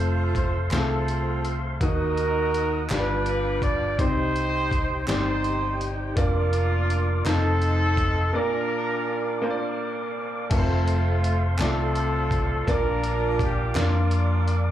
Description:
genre	slow gospel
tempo	55 BPM (dotted quarters)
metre	6/8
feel	straight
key	Bb major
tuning	A4 = 440 Hz
part	mellow horn section	melody	0.0-14.7 s	A3 to D5	-26 LUFS	right 1 dB	slapback echo
part	clear upright piano	accompaniment	0.0-14.7 s	G2 to Eb5	-30 LUFS	left 3 dB	slapback echo
part	tonewheel organ	sustained chords	0.0-14.7 s	Eb4 to Eb6	-35 LUFS	right 2 dB	slow rotary speaker, overdrive
part	hollow-body short-scale fingered electric bass	bass	0.0-14.7 s	F1 to F2	-25 LUFS	equal	none
part	trip hop sampler-style drum kit	drums	0.3-14.6 s	crash cymbal, hi-hat, kick drum, snare drum	-28 LUFS	equal	none
part	group handclap	percussion	0.7-7.6, 11.6-14.1 s	none	-37 LUFS	right 2 dB	none
room	studio reverb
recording	live gig heard through the venue's PA, club reverb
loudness	-22 LUFS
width	side -12 dB against mid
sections	0.0-10.5 A section; 10.5-14.7 A section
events	break 8.3-10.5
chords	0.0 F; 1.8 Ebm; 2.9 G7; 4.0 Cm; 6.2 Bb/F; 7.3 F7; 8.3 Bb; 10.5 F; 12.7 Bb

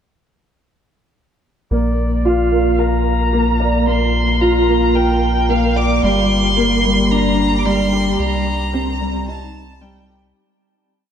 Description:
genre	piano and strings electronica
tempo	111 BPM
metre	4/4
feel	straight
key	Bb major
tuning	A4 = 440 Hz
part	bright violin	melody	1.7-10.2 s	D5 to D6	-20 LUFS	left 1 dB	low-pass filter, tape echo
part	dark grand piano	riff	1.7-10.4 s	G3 to D5	-16 LUFS	equal	ensemble chorus, tape echo
part	round analog bass	bass	1.7-10.3 s	G1 to C2	-20 LUFS	equal	none
room	wet cathedral reverb, RT60 6.1 s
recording	dreamy mix soaked in reverb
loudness	-14 LUFS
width	side -8 dB against mid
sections	1.7-10.4 build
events	build-up 1.7-10.4; filter sweep on violin 1.7-10.4; fade-out 7.5-10.4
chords	1.7 Bb; 6.0 Gm; 8.2 Cm7

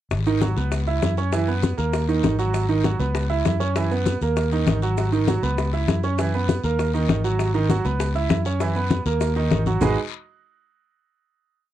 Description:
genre	latin, salsa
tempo	198 BPM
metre	4/4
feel	straight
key	G# minor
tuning	A4 = 442 Hz
part	fingered electric bass	bass	0.1-10.0 s	G#1 to F#2	-23 LUFS	left 1 dB	none
part	bongos	percussion	0.1-9.9 s	none	-28 LUFS	left 7 dB	none
part	congas	percussion	0.1-9.9 s	none	-25 LUFS	left 3 dB	none
part	guiro	percussion	0.1-9.9 s	none	-38 LUFS	left 19 dB	none
part	maracas	percussion	0.1-9.9 s	none	-44 LUFS	right 19 dB	none
part	bright grand piano	accompaniment	0.3-10.0 s	D#3 to E5	-24 LUFS	right 6 dB	none
room	light reverb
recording	dry, close 1970s-style studio recording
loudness	-19 LUFS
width	side -12 dB against mid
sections	0.1-9.8 montuno (vamp); 9.8-11.0 final chord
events	none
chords	0.1 G#m7; 0.7 C#m7; 1.3 F#7sus4; 1.9 D#5; 2.5 G#m7; 3.2 C#m7; 3.8 F#7sus4; 4.4 D#5; 5.0 G#m7; 5.6 C#m7; 6.2 F#7sus4; 6.8 D#5; 7.4 G#m7; 8.0 C#m7; 8.6 F#7sus4; 9.2 D#5; 9.8 G#m7

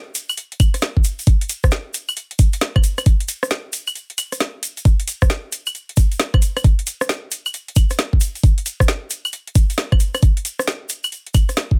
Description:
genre	UK garage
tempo	134 BPM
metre	4/4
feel	swing 64% on 16ths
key	none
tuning	none
part	garage drum kit	drums	0.1-11.7 s	claves, hi-hat, rim click, snare drum	-25 LUFS	equal	overdrive
part	tube shaker	percussion	0.2-11.7 s	none	-32 LUFS	equal	none
part	electronic kick drum	drums	0.6-11.8 s	none	-16 LUFS	equal	overdrive
room	little or no reverb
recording	dense, heavily limited modern master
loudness	-19 LUFS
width	mono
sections	0.0-11.8 A section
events	break 4.0-4.9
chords	none

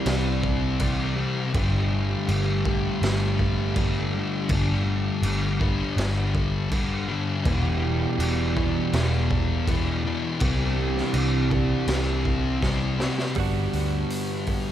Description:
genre	rock, shoegaze and dream pop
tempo	81 BPM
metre	4/4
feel	straight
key	G major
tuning	A4 = 440 Hz
part	direct-recorded clean electric guitar	riff	0.0-14.7 s	E2 to G4	-31 LUFS	right 8 dB	reverse reverb
part	thick fuzz guitar	riff	0.0-14.7 s	E2 to C4	-26 LUFS	left 4 dB	distortion, analog chorus
part	vintage muted picked electric bass	bass	0.1-14.0 s	E1 to D2	-26 LUFS	equal	none
part	raw garage drum kit	drums	0.1-14.7 s	crash cymbal, hi-hat, kick drum, snare drum	-29 LUFS	equal	none
room	moderate huge ambient reverb, RT60 4.9 s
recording	dreamy mix soaked in reverb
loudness	-22 LUFS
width	side -11 dB against mid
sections	0.0-13.4 A section; 13.4-14.7 B section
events	drum fill 12.6-13.4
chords	0.0 Cadd9; 1.5 Gsus2; 7.5 Em; 10.4 Cadd9; 13.4 Gmaj7

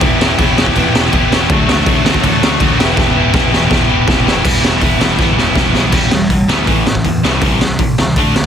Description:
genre	punk rock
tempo	162 BPM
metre	4/4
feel	straight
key	E minor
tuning	A4 = 438 Hz
part	distorted electric guitar	riff	0.0-8.5 s	A2 to G4	-13 LUFS	equal	distortion
part	growling picked electric bass	bass	0.0-8.5 s	E1 to E2	-19 LUFS	equal	overdrive
part	raw garage drum kit	drums	0.0-8.5 s	crash cymbal, hi-hat, kick drum, snare drum	-14 LUFS	equal	none
room	little or no reverb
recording	dense, heavily limited modern master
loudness	-10 LUFS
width	side -8 dB against mid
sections	0.0-4.4 A section; 4.4-5.9 B section; 5.9-8.5 C section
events	drum fill 3.0-4.4, 5.2-5.9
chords	0.0 Em; 1.5 D; 2.8 Em; 6.7 A5; 7.2 C

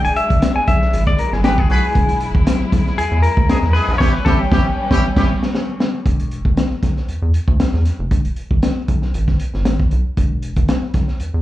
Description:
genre	funk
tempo	117 BPM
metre	4/4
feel	straight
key	E mixolydian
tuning	A4 = 443 Hz
part	semi-hollow electric guitar	accompaniment	0.0-4.9 s	G4 to G#5	-20 LUFS	left 2 dB	slapback echo
part	warm studio string section	sustained chords	0.0-6.0 s	F#3 to E4	-26 LUFS	equal	none
part	rubbery square bass	bass	0.0-11.4 s	E1 to E2	-19 LUFS	equal	none
part	crunchy breakbeat drum kit	drums	0.0-11.3 s	crash cymbal, hi-hat, kick drum, snare drum	-17 LUFS	equal	vintage 12-bit sampler grit
part	warm horn section	second line	1.4-5.3 s	G3 to B4	-22 LUFS	equal	slapback echo
room	little or no reverb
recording	live gig heard through the venue's PA, cassette tape, club ambience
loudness	-14 LUFS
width	side -15 dB against mid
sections	0.0-6.1 A section; 6.1-11.4 B section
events	clean electric guitar solo 0.0-6.1; band accent 4.0-6.1; drum fill 5.0-6.1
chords	0.0 E9; 4.0 A9; 6.1 E

